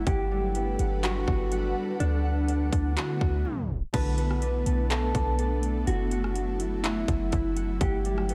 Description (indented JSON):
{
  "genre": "hip hop, atmospheric cloud-rap",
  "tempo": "124 BPM",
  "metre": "4/4",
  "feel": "half-time",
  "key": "B minor",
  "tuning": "A4 = 439 Hz",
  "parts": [
    { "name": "mellow electric guitar", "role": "melody", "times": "0.0-8.3 s", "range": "D4 to B4", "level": "-34 LUFS", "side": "equal", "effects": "tremolo, diffuse ambient delay" },
    { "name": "ethereal airy pad", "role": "sustained chords", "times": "0.0-8.3 s", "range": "D3 to F#5", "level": "-35 LUFS", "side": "equal", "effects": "ensemble chorus, built-in reverb, sidechain pumping" },
    { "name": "concert harp", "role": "arpeggios", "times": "0.0-8.3 s", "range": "G3 to A5", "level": "-40 LUFS", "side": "equal", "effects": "diffuse ambient delay" },
    { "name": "clean 808-style bass", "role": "bass", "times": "0.0-8.3 s", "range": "F#1 to D2", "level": "-30 LUFS", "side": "equal", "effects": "none" },
    { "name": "trap drum kit", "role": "drums", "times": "0.1-8.3 s", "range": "crash cymbal, handclaps, hi-hat, kick drum, rim click", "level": "-33 LUFS", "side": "equal", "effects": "overdrive" }
  ],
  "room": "moderate church reverb, RT60 2.8 s",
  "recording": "dreamy mix soaked in reverb, tape stop, faint mains hum",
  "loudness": "-27 LUFS",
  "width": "mono",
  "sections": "0.0-3.9 A section; 3.9-8.3 B section",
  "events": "break 3.5-3.9; tape stop 3.5-3.9",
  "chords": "0.1 Gmaj7; 2.0 D6; 3.9 Bm7; 5.9 F#m7; 7.8 Gmaj7",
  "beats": "| 0.07 0.55 1.03 1.52 | 2.00 2.49 2.97 3.45 | 3.94 4.42 4.91 5.39 | 5.87 6.36 6.84 7.33 | 7.81 8.29"
}